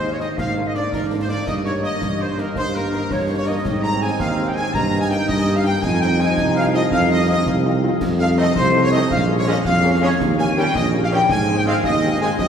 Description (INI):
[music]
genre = military-style march for wind band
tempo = 110 BPM (dotted quarters)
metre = 6/8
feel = straight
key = Ab major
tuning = A4 = 440 Hz
[part]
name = clear trumpet section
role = melody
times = 0.0-12.5 s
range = Bb4 to Bb5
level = -25 LUFS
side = equal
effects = none
[part]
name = mellow hollow small flute group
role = second line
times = 0.0-12.5 s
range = Bb4 to Bb5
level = -24 LUFS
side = left 2 dB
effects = none
[part]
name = mellow French horn section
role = accompaniment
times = 0.0-12.3 s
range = Ab3 to A4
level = -28 LUFS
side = left 3 dB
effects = none
[part]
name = clear trombone section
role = sustained chords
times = 0.0-12.5 s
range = D3 to Eb4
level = -27 LUFS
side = right 2 dB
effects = none
[part]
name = mellow tuba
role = bass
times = 0.0-12.5 s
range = Bb1 to Ab2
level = -20 LUFS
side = right 1 dB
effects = none
[part]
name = concert snare drum, concert bass drum and clash cymbals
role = drums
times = 0.2-12.5 s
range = none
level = -29 LUFS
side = left 1 dB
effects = none
[sound]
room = wet cathedral reverb, RT60 4.7 s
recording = recorded in a church or concert hall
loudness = -16 LUFS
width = side -7 dB against mid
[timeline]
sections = 0.0-12.5 A section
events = none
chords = 0.4 Bb7/Ab; 1.5 Eb/G; 3.6 Ab; 4.7 Eb/G; 5.8 Fm7; 8.0 F7; 9.1 Bbm7; 10.2 Eb7; 11.3 Ab